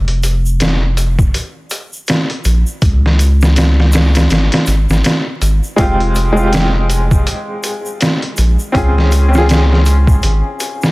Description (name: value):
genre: trip hop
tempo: 81 BPM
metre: 4/4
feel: swing 58% on 16ths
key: unclear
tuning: A4 = 438 Hz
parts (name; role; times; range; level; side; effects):
- warm sub bass; bass; 0.0-10.4 s; F1 to Db2; -12 LUFS; equal; none
- trip hop sampler-style drum kit; drums; 0.1-10.9 s; hi-hat, kick drum, snare drum; -15 LUFS; equal; overdrive, studio reverb
- tube shaker; percussion; 0.2-10.9 s; none; -30 LUFS; equal; none
- bright upright piano; accompaniment; 5.8-10.9 s; Ab3 to Ab4; -17 LUFS; equal; tremolo, tape echo
room: little or no reverb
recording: dense, heavily limited modern master, vinyl crackle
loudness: -11 LUFS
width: side -21 dB against mid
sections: 0.0-10.9 A section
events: none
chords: 0.0 N.C.; 2.8 Db5; 5.8 Fmadd9; 8.7 Dbmaj7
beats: 0.60 1.34 2.08 | 2.82 3.56 4.30 5.04 | 5.78 6.52 7.26 8.01 | 8.75 9.49 10.23